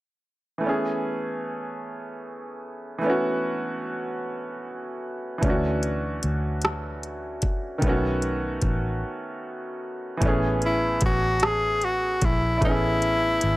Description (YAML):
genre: slow six-eight R&B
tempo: 50 BPM (dotted quarters)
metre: 6/8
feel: straight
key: A major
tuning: A4 = 440 Hz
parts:
  - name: clear baby grand piano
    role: accompaniment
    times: 0.6-13.6 s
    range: D#3 to G#4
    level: -27 LUFS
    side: right 1 dB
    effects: none
  - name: vintage muted fingered electric bass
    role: bass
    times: 5.4-13.6 s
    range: G#1 to D2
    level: -28 LUFS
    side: equal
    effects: none
  - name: smooth R&B drum kit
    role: drums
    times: 5.4-13.6 s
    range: hi-hat, kick drum, rim click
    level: -25 LUFS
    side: equal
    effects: none
  - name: bright tenor saxophone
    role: melody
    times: 10.7-13.6 s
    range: E4 to G#4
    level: -23 LUFS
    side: left 1 dB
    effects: none
room: small room ambience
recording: dry, gritty hardware recording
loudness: -23 LUFS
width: side -18 dB against mid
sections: 0.6-10.2 A section; 10.2-13.6 B section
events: break 9.0-10.2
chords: 0.6 Amaj9; 5.4 Dmaj7; 7.8 B7; 10.2 Amaj9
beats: | 0.62 1.82 | 3.02 4.22 | 5.42 6.62 | 7.82 9.02 | 10.22 11.42 | 12.62